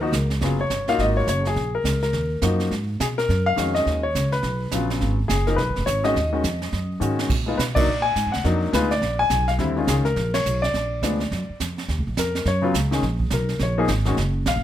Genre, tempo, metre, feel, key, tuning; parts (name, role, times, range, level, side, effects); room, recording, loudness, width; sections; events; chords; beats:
jazz piano trio; 209 BPM; 4/4; swing 62% on 8ths; Eb minor; A4 = 440 Hz
clear baby grand piano; melody; 0.0-14.6 s; Db3 to Ab5; -23 LUFS; left 3 dB
upright bass; bass; 0.0-14.6 s; Gb1 to Cb3; -24 LUFS; right 1 dB
jazz brush drum kit; drums; 0.1-14.6 s; brushed snare drum, crash cymbal, hi-hat, kick drum, ride cymbal, snare drum; -28 LUFS; right 3 dB
moderate club reverb, RT60 0.9 s; -20 LUFS; side -11 dB against mid
0.0-11.9 A section; 11.9-14.6 B section
drum fill 7.0; band accent 7.7, 10.3; grand piano solo 11.9-14.6
0.0 Ebm7; 2.7 Abm7; 6.2 Ebm7; 7.3 Bb7b9; 9.6 Eb5; 10.7 Bb; 11.9 Ebm7 (rootless)
0.13 | 0.41 0.70 0.99 1.28 | 1.56 1.85 2.14 2.42 | 2.71 3.00 3.28 3.57 | 3.86 4.14 4.43 4.72 | 5.00 5.29 5.58 5.86 | 6.15 6.44 6.72 7.01 | 7.30 7.58 7.87 8.16 | 8.45 8.73 9.02 9.30 | 9.59 9.88 10.17 10.45 | 10.74 11.03 11.31 11.60 | 11.88 12.17 12.46 12.74 | 13.03 13.31 13.60 13.89 | 14.17 14.46